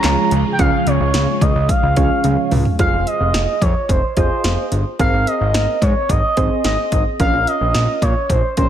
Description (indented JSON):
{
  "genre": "synth-pop",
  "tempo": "109 BPM",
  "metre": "4/4",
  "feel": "straight",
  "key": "F minor",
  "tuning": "A4 = 440 Hz",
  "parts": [
    { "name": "expressive synth lead", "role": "melody", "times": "0.0-8.7 s", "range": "C5 to Bb5", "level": "-19 LUFS", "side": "right 1 dB", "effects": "chorus, tape echo" },
    { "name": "soft electric-piano-like synth keys", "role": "accompaniment", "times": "0.0-8.7 s", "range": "C4 to Eb5", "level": "-23 LUFS", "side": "right 3 dB", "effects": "chorus" },
    { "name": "string machine, cellos", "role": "sustained chords", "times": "0.0-2.8 s", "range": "Db3 to Ab4", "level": "-23 LUFS", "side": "equal", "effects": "phaser, ensemble chorus" },
    { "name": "fat analog bass", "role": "bass", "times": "0.0-8.7 s", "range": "F1 to Bb2", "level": "-19 LUFS", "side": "equal", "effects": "none" },
    { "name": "punchy analog drum machine", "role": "drums", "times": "0.0-8.7 s", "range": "handclaps, hi-hat, kick drum, snare drum, toms", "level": "-19 LUFS", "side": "equal", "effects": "none" }
  ],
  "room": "moderate plate reverb, RT60 1.9 s",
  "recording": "dreamy mix soaked in reverb",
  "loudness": "-14 LUFS",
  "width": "side -10 dB against mid",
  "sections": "0.0-2.8 A section; 2.8-8.7 B section",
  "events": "drum fill 2.2-2.8",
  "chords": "0.0 Db; 2.8 Fm; 5.0 Abadd9; 7.2 Bbm"
}